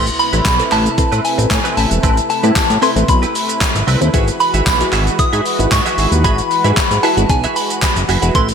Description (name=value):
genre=dance-pop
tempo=114 BPM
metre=4/4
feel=straight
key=E major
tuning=A4 = 440 Hz
part: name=soft synth bell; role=melody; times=0.0-8.5 s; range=G#5 to D#6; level=-18 LUFS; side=left 1 dB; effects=chorus, phaser, tape echo, slapback echo
part: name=wavetable chord stab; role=accompaniment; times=0.0-8.5 s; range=C4 to C5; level=-23 LUFS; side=equal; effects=sidechain pumping, slapback echo
part: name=lush unison pad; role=sustained chords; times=0.0-8.5 s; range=C3 to B4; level=-22 LUFS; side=right 1 dB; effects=chorus, sidechain pumping
part: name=direct-recorded clean electric guitar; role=riff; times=0.0-8.5 s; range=C4 to E5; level=-24 LUFS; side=right 8 dB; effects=ensemble chorus, slapback echo
part: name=fat analog bass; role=bass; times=0.0-8.5 s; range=E1 to A2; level=-16 LUFS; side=equal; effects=sidechain pumping
part: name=gated 80s digital drum machine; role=drums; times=0.1-8.5 s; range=handclaps, hi-hat, kick drum, shaker, snare drum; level=-17 LUFS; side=equal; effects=gated reverb, gated reverb snare
part: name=tambourine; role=percussion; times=0.5-8.0 s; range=none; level=-32 LUFS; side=left 9 dB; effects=none
room=light reverb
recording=none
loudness=-12 LUFS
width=side -7 dB against mid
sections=0.0-8.5 A section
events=none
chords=0.0 Amadd9; 4.1 Eadd9/G#